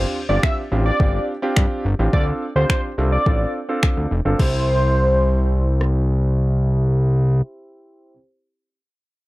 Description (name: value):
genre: dance-pop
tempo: 106 BPM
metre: 4/4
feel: straight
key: C major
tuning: A4 = 441 Hz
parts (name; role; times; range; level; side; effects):
- warm concert grand piano; accompaniment; 0.0-8.1 s; C4 to C5; -26 LUFS; right 2 dB; sidechain pumping, low-pass filter
- fat analog bass; bass; 0.0-7.4 s; F1 to G2; -18 LUFS; equal; sidechain pumping
- wide unison lead; melody; 0.3-6.1 s; C5 to E5; -23 LUFS; equal; sidechain pumping, low-pass filter
- smooth R&B drum kit; drums; 0.4-5.9 s; crash cymbal, finger snaps, kick drum, rim click; -20 LUFS; equal; overdrive
room: little or no reverb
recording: dark, warm production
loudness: -17 LUFS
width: side -19 dB against mid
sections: 0.0-4.4 A section; 4.4-6.7 B section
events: filter sweep 0.0-4.4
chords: 0.0 G7sus4; 2.1 Dm7; 4.4 C